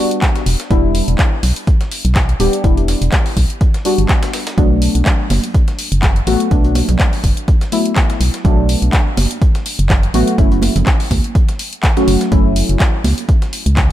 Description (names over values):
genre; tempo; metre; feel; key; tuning
deep house; 124 BPM; 4/4; swing 55% on 16ths; B minor; A4 = 440 Hz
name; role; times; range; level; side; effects
deep mellow chord stab; stabs; 0.0-13.9 s; F#3 to G4; -18 LUFS; left 1 dB; chorus, sidechain pumping, ping-pong delay
deep house drum kit; drums; 0.1-13.9 s; handclaps, hi-hat; -22 LUFS; left 1 dB; none
breakbeat sampler-style drum kit; drums; 0.2-13.9 s; hi-hat, snare drum; -30 LUFS; right 1 dB; high-pass filter on snare, high-pass filter on hats
electronic kick drum; drums; 0.2-13.9 s; none; -13 LUFS; equal; none
organ-like FM bass; bass; 0.5-13.9 s; D1 to C#2; -15 LUFS; equal; tube saturation, sidechain pumping
congas; percussion; 5.3-13.9 s; none; -23 LUFS; right 5 dB; none
room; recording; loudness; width
little or no reverb; none; -12 LUFS; side -13 dB against mid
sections
0.0-13.9 A section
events
none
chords
0.0 Em7; 4.6 Bm7; 10.4 F#m7